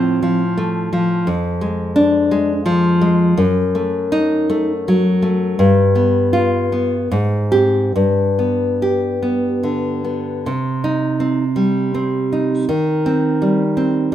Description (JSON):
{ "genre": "romantic piece for solo classical guitar", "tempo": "67-88 BPM", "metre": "3/4", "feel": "rubato", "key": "unclear", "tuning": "A4 = 440 Hz", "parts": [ { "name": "nylon-string guitar", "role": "solo", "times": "0.0-14.1 s", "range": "F2 to G4", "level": "-15 LUFS", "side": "equal", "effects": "none" } ], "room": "light reverb", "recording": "minimal, uncompressed stereo recording", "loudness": "-15 LUFS", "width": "side -11 dB against mid", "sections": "0.0-10.5 A section; 10.5-14.1 B section", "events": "none", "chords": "0.0 F/A; 1.3 Ddim/F; 3.4 F#m6; 5.6 G7; 7.1 Abmaj7; 8.0 G; 10.5 Cm; 12.7 Cm/Eb", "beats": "0.55 | 1.26 1.95 2.65 | 3.37 4.12 4.86 | 5.59 6.34 7.12 | 7.96 8.82 9.64 | 10.47 11.22 11.96 | 12.69 13.42 14.12" }